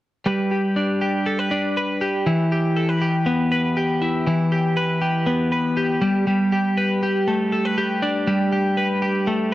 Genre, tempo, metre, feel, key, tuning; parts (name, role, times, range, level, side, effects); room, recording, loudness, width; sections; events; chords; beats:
indie pop; 120 BPM; 4/4; straight; G major; A4 = 439 Hz
twelve-string electric guitar; solo; 0.3-9.5 s; E3 to B4; -18 LUFS; equal; slapback echo
moderate booth ambience, RT60 0.2 s; dry, close 1970s-style studio recording; -18 LUFS; side -15 dB against mid
0.3-2.3 A section; 2.3-9.5 B section
0.3 G; 2.3 Em; 6.0 Gadd9
| 0.26 0.76 1.26 1.77 | 2.27 2.77 3.27 3.77 | 4.27 4.77 5.27 5.77 | 6.27 6.77 7.27 7.76 | 8.27 8.77 9.27